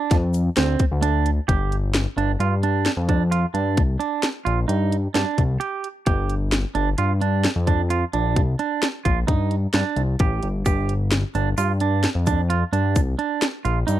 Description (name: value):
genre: progressive instrumental, band music in an uneven meter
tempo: 131 BPM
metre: 5/4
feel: straight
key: G minor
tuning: A4 = 440 Hz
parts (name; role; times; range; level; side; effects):
- clean electric guitar; arpeggios; 0.0-14.0 s; C4 to G4; -25 LUFS; right 9 dB; none
- fat analog bass; bass; 0.1-14.0 s; G1 to G2; -21 LUFS; left 1 dB; none
- garage drum kit; drums; 0.1-14.0 s; hi-hat, kick drum, snare drum; -22 LUFS; left 1 dB; overdrive
- tube shaker; percussion; 0.1-0.7, 10.7-14.0 s; none; -38 LUFS; left 22 dB; none
room: little or no reverb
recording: dry, close 1970s-style studio recording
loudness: -19 LUFS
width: side -13 dB against mid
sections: 0.0-1.5 A section; 1.5-14.0 B section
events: kick and snare drop out 1.0-1.5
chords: 0.0 Dm7; 1.5 G5; 3.8 C7sus2; 6.1 Gm7; 8.4 C7sus2; 10.7 G5; 13.0 Cm9